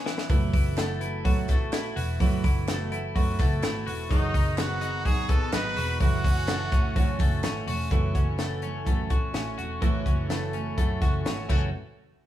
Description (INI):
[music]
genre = jangly indie pop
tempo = 126 BPM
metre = 4/4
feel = straight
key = F# dorian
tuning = A4 = 441 Hz
[part]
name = twelve-string electric guitar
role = arpeggios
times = 0.0-11.7 s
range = D#3 to G#4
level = -32 LUFS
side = left 3 dB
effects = none
[part]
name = compact cocktail drum kit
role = drums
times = 0.1-11.6 s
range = crash cymbal, hi-hat, kick drum, snare drum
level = -26 LUFS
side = equal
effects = none
[part]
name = picked steel-string acoustic guitar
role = accompaniment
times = 0.3-11.7 s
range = F#2 to B4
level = -34 LUFS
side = right 6 dB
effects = none
[part]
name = warm upright piano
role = accompaniment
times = 0.3-11.8 s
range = B3 to B4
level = -38 LUFS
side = right 4 dB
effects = none
[part]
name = vintage muted picked electric bass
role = bass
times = 0.3-11.7 s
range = E1 to F#2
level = -31 LUFS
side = equal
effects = none
[part]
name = group handclap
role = percussion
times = 0.8-7.5 s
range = none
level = -44 LUFS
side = right 7 dB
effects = none
[part]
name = bright trumpet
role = melody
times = 4.1-7.4 s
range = D#4 to B4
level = -31 LUFS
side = right 2 dB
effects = none
[part]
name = warm studio violin section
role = second line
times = 4.1-7.4 s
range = D#5 to B5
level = -40 LUFS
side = equal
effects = none
[sound]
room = light reverb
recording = band playing live in one room, small room ambience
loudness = -23 LUFS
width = side -12 dB against mid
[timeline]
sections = 0.0-7.9 A section; 7.9-11.7 B section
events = drum fill 0.0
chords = 0.1 B7sus4; 4.1 G#m7/F#; 6.0 F#m7; 11.7 N.C.